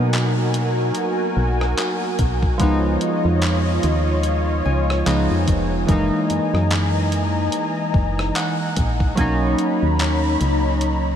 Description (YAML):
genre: contemporary R&B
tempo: 73 BPM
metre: 4/4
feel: swing 58% on 16ths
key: B major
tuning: A4 = 436 Hz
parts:
  - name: warm analog keys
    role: accompaniment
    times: 0.0-11.2 s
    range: E3 to D#4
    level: -22 LUFS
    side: right 1 dB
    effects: chorus
  - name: warm analog pad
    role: sustained chords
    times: 0.0-11.2 s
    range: E3 to B5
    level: -24 LUFS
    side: left 1 dB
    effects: chorus
  - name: solid FM bass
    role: bass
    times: 0.0-11.2 s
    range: E#1 to B2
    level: -21 LUFS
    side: equal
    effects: none
  - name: concert harp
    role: texture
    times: 0.0-10.9 s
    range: D#5 to C#6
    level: -35 LUFS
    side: left 1 dB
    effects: diffuse ambient delay
  - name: gated 80s digital drum machine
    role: drums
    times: 0.1-11.0 s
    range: handclaps, hi-hat, kick drum, rim click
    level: -26 LUFS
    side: equal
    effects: gated reverb
room: moderate huge ambient reverb, RT60 7.2 s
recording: dreamy mix soaked in reverb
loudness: -17 LUFS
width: side -9 dB against mid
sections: 0.0-11.2 A section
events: none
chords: 0.0 G#m9/B; 2.6 C#9; 5.1 C#7; 5.9 F#13; 9.2 Bmaj9